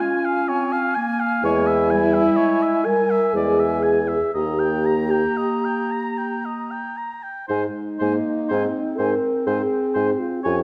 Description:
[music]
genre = classical, slow romantic movement for wind quintet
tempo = 56-64 BPM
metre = 3/4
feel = rubato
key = Ab major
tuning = A4 = 440 Hz
[part]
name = silver concert flute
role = melody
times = 0.0-10.6 s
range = Ab5 to Bb5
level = -32 LUFS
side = equal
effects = none
[part]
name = warm oboe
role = second line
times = 0.0-10.6 s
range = C5 to Bb5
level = -30 LUFS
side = equal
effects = none
[part]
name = dark French horn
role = accompaniment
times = 0.0-10.6 s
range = Eb4 to Bb4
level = -24 LUFS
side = equal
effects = none
[part]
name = mellow clarinet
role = accompaniment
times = 0.0-10.6 s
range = G3 to Db4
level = -30 LUFS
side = equal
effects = none
[part]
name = dark bassoon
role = bass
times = 1.4-10.6 s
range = Eb2 to Ab2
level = -25 LUFS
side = equal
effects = none
[sound]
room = moderate scoring stage reverb, RT60 1.4 s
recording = none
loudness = -21 LUFS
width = mono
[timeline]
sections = 0.0-10.6 A section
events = none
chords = 0.0 Db; 1.4 Dbm/Fb; 3.3 E7; 4.3 Eb; 7.5 Ab

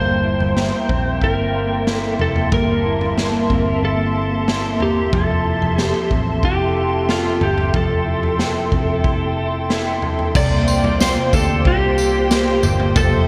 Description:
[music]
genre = dream pop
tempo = 92 BPM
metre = 4/4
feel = straight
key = unclear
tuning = A4 = 440 Hz
[part]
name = electric slide guitar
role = melody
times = 0.0-13.3 s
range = F4 to D5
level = -24 LUFS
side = equal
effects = lush chorus, analog delay
[part]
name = hollow soft pad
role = sustained chords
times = 0.0-13.3 s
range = Bb3 to C6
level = -25 LUFS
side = equal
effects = ensemble chorus
[part]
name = clean electric guitar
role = arpeggios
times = 0.0-13.3 s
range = C3 to Bb4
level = -27 LUFS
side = equal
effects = lush chorus, analog delay
[part]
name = vintage muted picked electric bass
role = bass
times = 0.0-13.3 s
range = F1 to D2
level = -25 LUFS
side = equal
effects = none
[part]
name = raw garage drum kit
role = drums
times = 0.4-13.1 s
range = crash cymbal, kick drum, snare drum, tambourine, toms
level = -23 LUFS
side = equal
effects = none
[part]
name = synth chime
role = texture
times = 10.7-13.3 s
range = C6 to A6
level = -36 LUFS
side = equal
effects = none
[sound]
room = wet cathedral reverb, RT60 7.0 s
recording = dreamy mix soaked in reverb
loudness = -18 LUFS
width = mono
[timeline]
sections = 0.0-10.4 A section; 10.4-13.3 B section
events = none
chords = 0.0 C7; 5.1 Fmaj7; 10.4 C7sus4

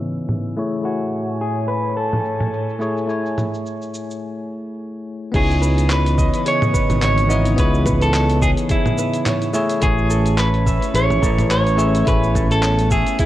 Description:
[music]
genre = sunset chillout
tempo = 107 BPM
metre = 4/4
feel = swing 56% on 16ths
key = A lydian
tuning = A4 = 440 Hz
[part]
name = bell-like tine electric piano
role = accompaniment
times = 0.0-13.3 s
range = A3 to G#5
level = -24 LUFS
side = left 1 dB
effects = auto-pan
[part]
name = airy breathy pad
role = sustained chords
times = 0.0-13.3 s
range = A2 to E6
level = -26 LUFS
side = equal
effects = chorus
[part]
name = dusty soul sampler-style drum kit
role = drums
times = 0.0-13.3 s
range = cabasa, crash cymbal, handclaps, hi-hat, toms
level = -25 LUFS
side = equal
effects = none
[part]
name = clean electric guitar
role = melody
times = 0.9-13.3 s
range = E4 to C#5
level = -22 LUFS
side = equal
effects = ping-pong delay
[part]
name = Celtic harp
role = arpeggios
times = 5.3-13.3 s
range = G#4 to E5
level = -27 LUFS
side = right 1 dB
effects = ping-pong delay
[part]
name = fingered electric bass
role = bass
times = 5.3-13.0 s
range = G#1 to C#2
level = -18 LUFS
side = equal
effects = none
[part]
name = electronic kick drum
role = drums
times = 5.3-13.3 s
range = none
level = -20 LUFS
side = equal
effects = none
[sound]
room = light reverb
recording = worn, warbling old tape, cassette tape, warbly pitch drift, low-pass filter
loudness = -16 LUFS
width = side -14 dB against mid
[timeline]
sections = 0.0-5.3 A section; 5.3-13.3 B section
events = filter sweep 0.0-5.3; break 4.2-5.3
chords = 0.0 C#m9; 0.6 Amaj7; 5.3 C#m9; 9.5 Amaj7

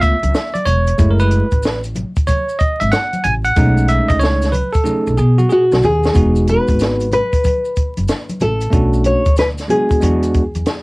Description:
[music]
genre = hip hop, jazz-hop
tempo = 93 BPM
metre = 4/4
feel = swing 64% on 16ths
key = E major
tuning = A4 = 440 Hz
[part]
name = bell-like tine electric piano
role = accompaniment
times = 0.0-10.4 s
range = G#3 to G#5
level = -17 LUFS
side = right 1 dB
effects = cassette tape
[part]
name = upright bass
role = bass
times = 0.0-10.6 s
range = E1 to B2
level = -16 LUFS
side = equal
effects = none
[part]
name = compact cocktail drum kit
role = drums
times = 0.0-10.8 s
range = hi-hat, kick drum, snare drum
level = -17 LUFS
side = equal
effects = cassette tape
[part]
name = maracas and congas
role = percussion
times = 0.0-10.8 s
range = none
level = -28 LUFS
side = left 1 dB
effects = none
[part]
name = nylon-string guitar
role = melody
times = 5.5-10.8 s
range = F#4 to C#5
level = -16 LUFS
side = left 1 dB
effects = none
[sound]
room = light reverb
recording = home recording on cassette, vinyl crackle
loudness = -13 LUFS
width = side -24 dB against mid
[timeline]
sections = 0.0-6.1 A section; 6.1-10.8 B section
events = tine electric piano solo 0.0-6.1; drum fill 4.9-6.1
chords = 0.0 C#7alt; 1.0 F#m9; 3.6 B13; 6.1 Emaj7; 8.7 Bm9; 10.0 E7

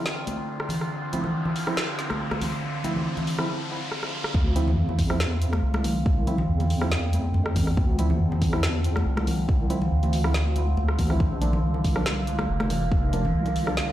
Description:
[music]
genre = deep dubstep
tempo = 140 BPM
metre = 4/4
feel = half-time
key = D minor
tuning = A4 = 439 Hz
[part]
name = overtone-sweeping drone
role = sustained chords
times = 0.0-13.9 s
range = D3 to F4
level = -32 LUFS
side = right 1 dB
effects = chorus, built-in reverb
[part]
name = percussive organ stab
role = stabs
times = 0.0-13.8 s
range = F3 to E4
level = -33 LUFS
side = right 2 dB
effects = wide subtle chorus, dub echo
[part]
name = riser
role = sound effects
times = 0.0-4.3 s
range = none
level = -35 LUFS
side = left 1 dB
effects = none
[part]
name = deep house drum kit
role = drums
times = 0.1-13.9 s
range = hi-hat, rim click, snare drum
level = -31 LUFS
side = equal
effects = small room reverb
[part]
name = congas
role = percussion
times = 0.3-13.5 s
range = none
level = -30 LUFS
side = equal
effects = dub echo
[part]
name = deep soft wobble bass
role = bass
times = 4.3-13.9 s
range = F1 to F2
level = -24 LUFS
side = equal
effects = chorus
[part]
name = electronic kick drum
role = drums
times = 4.3-13.0 s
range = none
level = -24 LUFS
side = equal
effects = small room reverb
[sound]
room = light reverb, digital ambience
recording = played on a big sound system in a bare room, stone room reverb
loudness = -22 LUFS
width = side -13 dB against mid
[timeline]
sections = 0.0-4.3 A section; 4.3-13.9 B section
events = build-up 0.0-4.3; riser 0.0-4.3; break 3.5-4.3; drum fill 3.9-4.3; drop 4.3-13.9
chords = 0.0 Dm7; 11.2 Bb

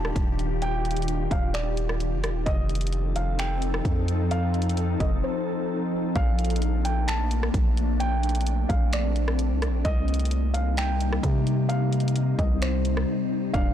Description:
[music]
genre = hip hop, atmospheric cloud-rap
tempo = 130 BPM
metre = 4/4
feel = half-time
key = Bb major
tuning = A4 = 440 Hz
[part]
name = felt-muted upright piano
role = melody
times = 0.0-13.7 s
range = C5 to A5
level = -33 LUFS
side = right 2 dB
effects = tape echo
[part]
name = glassy FM pad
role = sustained chords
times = 0.0-13.7 s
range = C3 to A4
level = -29 LUFS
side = left 3 dB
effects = ensemble chorus, built-in reverb, sidechain pumping
[part]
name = long sustained 808-style bass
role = bass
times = 0.0-13.7 s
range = Eb1 to C3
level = -25 LUFS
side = equal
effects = transformer saturation
[part]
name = pop drum kit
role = drums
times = 0.0-13.6 s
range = finger snaps, hi-hat, kick drum, rim click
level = -28 LUFS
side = equal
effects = overdrive, soft clipping on snare
[part]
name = soft electric-piano-like synth keys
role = arpeggios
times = 13.5-13.7 s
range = D4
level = -32 LUFS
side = right 3 dB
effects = chorus, tremolo
[sound]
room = digital ambience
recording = blown-out, overdriven recording, overdrive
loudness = -23 LUFS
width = side -10 dB against mid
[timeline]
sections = 0.0-6.2 A section; 6.2-13.7 B section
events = break 5.2-6.2, 13.1-13.5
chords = 0.0 Ebmaj9; 2.5 F7; 6.2 Bbmaj7; 9.8 Cm7

